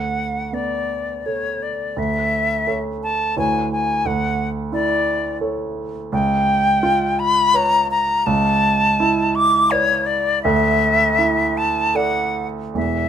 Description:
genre	classical, impressionist duo for flute and grand piano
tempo	73-89 BPM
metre	3/4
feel	rubato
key	D major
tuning	A4 = 439 Hz
part	bright silver concert flute	melody	0.0-13.1 s	C#5 to D6	-18 LUFS	left 2 dB	none
part	warm grand piano	accompaniment	0.0-13.1 s	E1 to D5	-22 LUFS	right 2 dB	none
room	light reverb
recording	minimal, uncompressed stereo recording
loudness	-16 LUFS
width	side -9 dB against mid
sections	0.0-13.1 A section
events	none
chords	0.0 Bm9/D; 2.0 Dsus2; 3.4 E13/D; 4.0 Dsus2; 6.1 C#7#11; 8.3 Bm11/C#; 10.4 Dsus2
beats	0.53 1.26 | 1.97 2.67 3.37 | 4.05 4.72 5.41 | 6.12 6.83 7.55 | 8.27 9.00 9.72 | 10.44 11.19 11.95 | 12.76

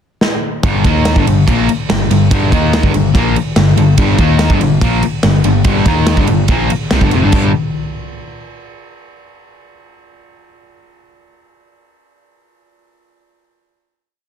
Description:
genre	hard rock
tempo	143 BPM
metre	4/4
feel	straight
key	G minor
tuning	A4 = 439 Hz
part	big rock drum kit	drums	0.2-7.4 s	crash cymbal, kick drum, ride cymbal, snare drum	-15 LUFS	equal	none
part	distorted electric guitar	riff	0.6-7.5 s	F2 to Eb4	-17 LUFS	right 11 dB	distortion
part	sludgy distorted guitar	riff	0.6-7.5 s	F2 to Eb4	-15 LUFS	left 11 dB	overdrive
part	hollow-body short-scale picked electric bass	bass	0.6-7.5 s	F1 to Eb2	-16 LUFS	right 1 dB	none
room	light reverb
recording	dense, heavily limited modern master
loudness	-10 LUFS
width	side -8 dB against mid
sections	0.0-0.6 pickup bar; 0.6-7.3 riff; 7.3-9.0 final chord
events	drum fill 0.2-0.6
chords	0.0 N.C.; 0.6 Gm; 7.3 G5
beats	0.22 | 0.64 1.06 1.48 1.89 | 2.31 2.73 3.15 3.56 | 3.98 4.40 4.82 5.24 | 5.65 6.07 6.49 6.91 | 7.33

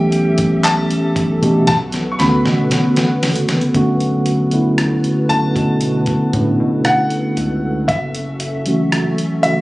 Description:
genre	contemporary R&B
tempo	58 BPM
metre	4/4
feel	straight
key	B minor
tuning	A4 = 440 Hz
part	clear baby grand piano	melody	0.0-9.6 s	E5 to C#6	-20 LUFS	left 1 dB	digital delay
part	mellow tine electric piano	accompaniment	0.0-9.6 s	D3 to G4	-15 LUFS	equal	slow stereo tremolo
part	hollow soft pad	sustained chords	0.0-9.6 s	B3 to E5	-24 LUFS	equal	ensemble chorus
part	rubbery square bass	bass	0.0-9.6 s	F#1 to B2	-23 LUFS	equal	none
part	dusty soul sampler-style drum kit	drums	0.1-9.6 s	handclaps, hi-hat, kick drum, rim click, snare drum	-21 LUFS	equal	none
room	light reverb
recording	recorded on a phone in the room, club reverb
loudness	-14 LUFS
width	side -19 dB against mid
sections	0.0-3.7 A section; 3.7-9.6 B section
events	drum fill 1.7-3.7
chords	0.0 A7/B; 1.7 Bm7; 7.9 F#m7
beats	0.64 1.68 2.71 | 3.75 4.78 5.82 6.85 | 7.88 8.92

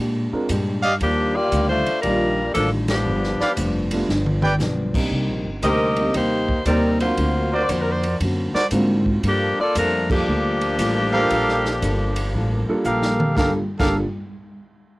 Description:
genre	jazz, big band swing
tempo	117 BPM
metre	4/4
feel	swing 66% on 8ths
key	G minor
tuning	A4 = 440 Hz
part	hollow-body jazz guitar	accompaniment	0.0-14.0 s	G2 to A4	-27 LUFS	left 2 dB	cassette tape
part	upright bass	bass	0.0-14.0 s	F1 to Bb2	-23 LUFS	equal	none
part	warm baby grand piano	accompaniment	0.3-14.0 s	F#3 to F5	-25 LUFS	right 2 dB	cassette tape
part	swinging big-band drum kit	drums	0.5-13.9 s	crash cymbal, hi-hat, kick drum, ride cymbal, snare drum, toms	-28 LUFS	equal	cassette tape
part	mellow trumpet section	stabs	0.8-14.0 s	F#4 to G5	-21 LUFS	right 1 dB	cassette tape
part	warm saxophone section	melody	1.0-12.9 s	F3 to Eb5	-22 LUFS	left 1 dB	cassette tape
room	light reverb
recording	home recording on cassette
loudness	-18 LUFS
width	side -20 dB against mid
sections	0.0-13.4 A section; 13.4-15.0 B section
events	band accent 2.8, 10.0; drum fill 4.1-4.6, 12.8-13.4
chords	0.0 Bb13; 1.0 Ebmaj9; 3.1 G7; 5.1 Cm7; 7.2 D7alt; 9.2 Gm9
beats	0.49 | 1.01 1.52 2.04 2.55 | 3.06 3.58 4.09 4.61 | 5.12 5.64 6.15 6.67 | 7.18 7.70 8.21 8.72 | 9.24 9.76 10.27 10.79 | 11.30 11.81 12.33 12.85 | 13.36 13.88

